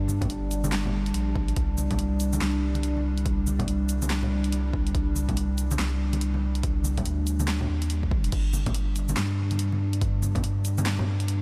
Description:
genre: deep dubstep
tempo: 142 BPM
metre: 4/4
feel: swing 61% on 16ths, half-time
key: unclear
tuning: A4 = 442 Hz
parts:
  - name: dark analog pad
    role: sustained chords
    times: 0.0-11.4 s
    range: G3 to D4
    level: -34 LUFS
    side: equal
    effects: chorus
  - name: soft dub sub bass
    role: bass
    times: 0.0-11.4 s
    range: G1 to G2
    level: -29 LUFS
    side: equal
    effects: none
  - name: deep house drum kit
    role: drums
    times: 0.1-11.4 s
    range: crash cymbal, handclaps, hi-hat, shaker, snare drum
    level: -37 LUFS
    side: equal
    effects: none
  - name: congas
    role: percussion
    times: 0.1-11.1 s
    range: none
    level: -37 LUFS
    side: equal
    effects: dub echo
  - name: electronic kick drum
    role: drums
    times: 0.2-10.4 s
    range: none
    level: -31 LUFS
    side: equal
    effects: none
room: light reverb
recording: none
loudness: -26 LUFS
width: mono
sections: 0.0-11.4 A section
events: none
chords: 0.0 Gm; 1.6 C5; 8.3 G5

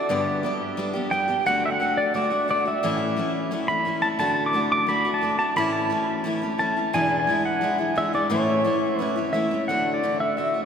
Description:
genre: country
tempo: 175 BPM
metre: 4/4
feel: straight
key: D major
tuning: A4 = 438 Hz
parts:
  - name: pedal steel guitar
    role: melody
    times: 0.0-10.6 s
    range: C#5 to D6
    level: -23 LUFS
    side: right 1 dB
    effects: none
  - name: picked steel-string acoustic guitar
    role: accompaniment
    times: 0.0-10.7 s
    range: E2 to G4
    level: -25 LUFS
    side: left 2 dB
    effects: none
room: wet cathedral reverb, RT60 6.0 s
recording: recorded in a church or concert hall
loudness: -21 LUFS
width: side -7 dB against mid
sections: 0.0-9.7 A section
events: none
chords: 0.1 G; 1.5 D; 2.8 A; 4.2 D; 5.6 A; 6.9 E7; 8.3 A; 9.7 D

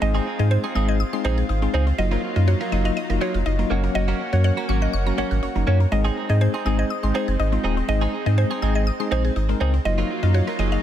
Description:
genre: pop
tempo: 122 BPM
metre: 4/4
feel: straight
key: unclear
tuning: A4 = 440 Hz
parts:
  - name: mallet-like synth pluck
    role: melody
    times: 0.0-10.8 s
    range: C5 to Eb5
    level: -30 LUFS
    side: right 1 dB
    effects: chorus, ping-pong delay
  - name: bell-like tine electric piano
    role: accompaniment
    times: 0.0-10.8 s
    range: Gb3 to Bb4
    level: -27 LUFS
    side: left 2 dB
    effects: medium stereo tremolo
  - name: lush unison pad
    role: sustained chords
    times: 0.0-10.8 s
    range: Gb3 to Gb4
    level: -31 LUFS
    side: left 1 dB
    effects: chorus
  - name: mallet-like synth pluck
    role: arpeggios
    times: 0.0-10.8 s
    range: Gb3 to Ab6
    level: -32 LUFS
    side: left 2 dB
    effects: chorus, phaser, ping-pong delay
  - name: direct-recorded clean electric guitar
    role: riff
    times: 0.0-10.8 s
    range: Gb3 to Ab4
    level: -31 LUFS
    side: right 7 dB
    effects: lush chorus
  - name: warm sub bass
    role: bass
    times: 0.0-10.8 s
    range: Eb1 to Ab2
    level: -20 LUFS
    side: equal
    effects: none
room: digital ambience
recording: none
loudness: -19 LUFS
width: side -10 dB against mid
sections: 0.0-10.8 A section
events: none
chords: 0.0 Ab; 2.0 Ebmadd9/Gb; 3.7 Gb; 5.9 Ab; 9.9 Ebmadd9/Gb

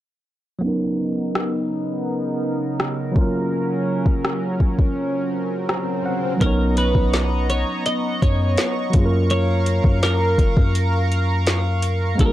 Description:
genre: contemporary R&B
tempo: 83 BPM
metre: 4/4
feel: straight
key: F# major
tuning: A4 = 438 Hz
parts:
  - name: tine electric piano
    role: accompaniment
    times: 0.6-12.3 s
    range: F#3 to A#5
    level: -25 LUFS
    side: right 1 dB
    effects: low-pass filter
  - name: chorused pulse-width pad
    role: sustained chords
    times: 0.6-12.3 s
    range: C#3 to C#6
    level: -25 LUFS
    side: equal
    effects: sidechain pumping, low-pass filter
  - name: smooth R&B drum kit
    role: drums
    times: 1.4-12.3 s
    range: hi-hat, kick drum, rim click, snare drum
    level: -20 LUFS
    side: equal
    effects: none
  - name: swell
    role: sound effects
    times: 5.2-6.4 s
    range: none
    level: -30 LUFS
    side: left 7 dB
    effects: none
  - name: twelve-string electric guitar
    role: melody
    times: 6.4-12.3 s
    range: A#4 to D#5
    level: -24 LUFS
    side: right 1 dB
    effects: lush chorus, tape echo
  - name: long sustained 808-style bass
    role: bass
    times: 6.4-12.3 s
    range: F#1 to F#2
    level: -20 LUFS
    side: equal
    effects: none
room: digital ambience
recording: dry, gritty hardware recording, cassette tape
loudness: -18 LUFS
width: side -14 dB against mid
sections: 0.6-6.4 A section; 6.4-12.3 B section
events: filter sweep 0.6-6.4; swell 5.2-6.4; tine electric piano fill 5.3-6.4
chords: 0.6 Bmaj9; 3.2 F#maj7; 6.4 Bmaj9; 8.9 F#maj7

